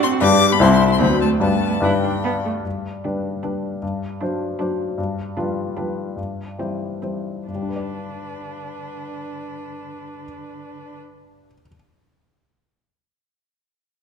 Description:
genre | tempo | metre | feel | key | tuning
quick classical-period movement for piano quartet | 129-157 BPM | 3/4 | straight | G major | A4 = 440 Hz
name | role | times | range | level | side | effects
rich violin | melody | 0.0-11.0 s | B4 to D6 | -24 LUFS | left 9 dB | none
dark cello | second line | 0.0-11.0 s | D3 to D4 | -28 LUFS | right 8 dB | none
warm baby grand piano | accompaniment | 0.0-11.7 s | C2 to D5 | -20 LUFS | left 3 dB | none
warm viola | accompaniment | 0.0-11.0 s | A3 to G4 | -30 LUFS | right 3 dB | none
room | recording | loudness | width
moderate scoring stage reverb, RT60 1.5 s | close, detailed microphones | -18 LUFS | side -6 dB against mid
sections
0.0-2.6 A section; 2.6-7.5 B section; 7.5-10.2 C section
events
slowing down 4.4-7.5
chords
0.2 G; 0.6 C; 1.0 D7; 1.4 G; 3.8 D7/G; 5.0 G7; 6.2 C/G; 7.5 G

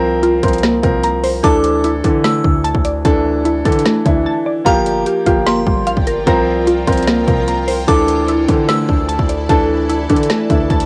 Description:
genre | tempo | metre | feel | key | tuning
hip hop, trap | 149 BPM | 4/4 | half-time | unclear | A4 = 441 Hz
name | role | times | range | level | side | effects
warm grand piano | accompaniment | 0.0-10.9 s | E3 to Bb4 | -18 LUFS | equal | cassette tape
glassy wavetable pluck | arpeggios | 0.0-10.9 s | C3 to Bb5 | -21 LUFS | equal | chorus, cassette tape, tape echo
distorted 808-style bass | bass | 0.0-10.9 s | G1 to D3 | -25 LUFS | equal | distortion
trap drum kit | drums | 0.2-10.9 s | hi-hat, kick drum, snare drum | -20 LUFS | equal | none
delicate synth tine bell | second line | 1.4-9.5 s | Bb5 to E6 | -25 LUFS | equal | chorus, cassette tape, tape echo
granular cloud pad | sustained chords | 5.4-10.9 s | E4 to A5 | -29 LUFS | equal | built-in reverb, cassette tape
room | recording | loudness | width
little or no reverb | home recording on cassette | -15 LUFS | mono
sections
0.0-10.9 A section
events
break 4.3-4.7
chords
0.0 C7sus4; 1.4 Dsus2; 4.7 Gm7; 6.3 C7sus4; 7.9 Dsus2

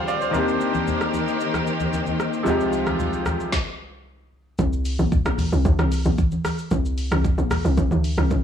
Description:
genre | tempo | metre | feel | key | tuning
amapiano | 113 BPM | 4/4 | straight | unclear | A4 = 443 Hz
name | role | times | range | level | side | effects
clear grand piano | accompaniment | 0.0-3.5 s | C3 to G5 | -24 LUFS | equal | none
rich studio string section | sustained chords | 0.0-3.5 s | C2 to C5 | -26 LUFS | left 2 dB | sidechain pumping
deep house drum kit | drums | 0.1-8.4 s | hi-hat, kick drum, rim click, shaker, snare drum | -25 LUFS | equal | vintage 12-bit sampler grit, soft clipping on snare
congas | percussion | 0.3-8.4 s | none | -28 LUFS | left 1 dB | none
tight log drum bass | bass | 4.6-8.4 s | Bb1 to D2 | -21 LUFS | equal | none
room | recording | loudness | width
small room reverb | blown-out, overdriven recording, overdrive | -20 LUFS | side -8 dB against mid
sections
0.0-4.6 A section; 4.6-8.4 B section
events
grand piano fill 0.0-0.3; stop 3.5-4.6; drop 4.6-8.4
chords
0.3 Cm7; 2.5 Fm7/C; 4.6 Bbsus2

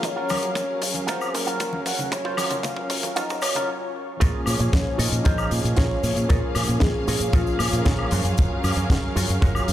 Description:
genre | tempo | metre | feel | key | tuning
nu-disco, nu disco | 115 BPM | 4/4 | straight | Bb minor | A4 = 439 Hz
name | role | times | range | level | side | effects
soft octave-layered synth lead | melody | 0.0-8.1 s | F4 to Gb5 | -30 LUFS | left 1 dB | chorus, phaser, ping-pong delay
warm analog pad | accompaniment | 0.0-9.7 s | F3 to F5 | -29 LUFS | equal | chorus, sidechain pumping, ping-pong delay
dark studio string section | sustained chords | 0.0-9.7 s | Ab4 to F5 | -35 LUFS | left 1 dB | sidechain pumping
electric guitar with an envelope filter | riff | 0.0-9.7 s | F4 to Db5 | -32 LUFS | right 2 dB | analog chorus, ping-pong delay
kick drum | drums | 0.0-9.5 s | none | -21 LUFS | equal | high-pass filter on kick, high-pass filter on snare, high-pass filter on room
tight funk drum kit | drums | 0.0-9.7 s | hi-hat, shaker, snare drum, toms, woodblock | -28 LUFS | left 2 dB | high-pass filter on toms, high-pass filter on hats, high-pass filter on snare, high-pass filter on perc, high-pass filter on room
congas | percussion | 0.3-3.7 s | none | -36 LUFS | left 2 dB | none
fingered electric bass with an envelope filter | bass | 4.2-9.7 s | Gb1 to Bb2 | -24 LUFS | equal | tube saturation
room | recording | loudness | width
light reverb, small room ambience | played on a big sound system in a bare room, large studio reverb, high-pass filter | -20 LUFS | side -12 dB against mid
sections
0.0-4.2 A section; 4.2-9.7 B section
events
build-up 0.0-4.2; drum fill 0.0-3.7; filter sweep on clean electric guitar 0.0-4.2; stop 3.7-4.2; drop 4.2-9.7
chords
0.0 Gbmaj7; 4.2 Bbm7; 8.1 Gbmaj7

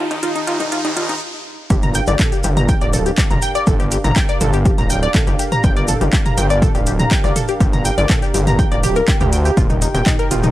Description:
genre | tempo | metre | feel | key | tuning
melodic techno | 122 BPM | 4/4 | straight | G minor | A4 = 440 Hz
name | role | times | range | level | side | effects
fat analog lead | melody | 0.0-1.2 s | Eb4 | -25 LUFS | equal | sidechain pumping, analog delay
warm analog pad | sustained chords | 0.0-10.5 s | D4 to Bb5 | -27 LUFS | right 2 dB | chorus, sidechain pumping
tight sequenced synth | arpeggios | 0.0-10.5 s | Eb4 to Bb5 | -21 LUFS | left 1 dB | chorus, sidechain pumping, tape echo
gritty driven synth bass | bass | 0.0-10.5 s | D1 to D2 | -18 LUFS | equal | sidechain pumping, high-pass filter
riser | sound effects | 0.0-1.2 s | none | -26 LUFS | right 1 dB | none
house drum kit | drums | 0.1-10.5 s | handclaps, hi-hat, rim click, toms | -22 LUFS | equal | overdrive, high-pass filter on hats, high-pass filter on toms, high-pass filter on snare, high-pass filter on room
electronic kick drum | drums | 1.7-10.2 s | none | -17 LUFS | equal | overdrive
cabasa | percussion | 1.7-10.5 s | none | -30 LUFS | right 2 dB | none
room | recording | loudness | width
digital ambience | dry, gritty hardware recording, cassette tape | -14 LUFS | side -15 dB against mid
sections
0.0-1.7 A section; 1.7-10.5 B section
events
build-up 0.0-1.7; riser 0.0-1.2; stop 1.2-1.7; drop 1.7-10.5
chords
0.0 Eb; 1.7 Gm7; 9.6 Eb

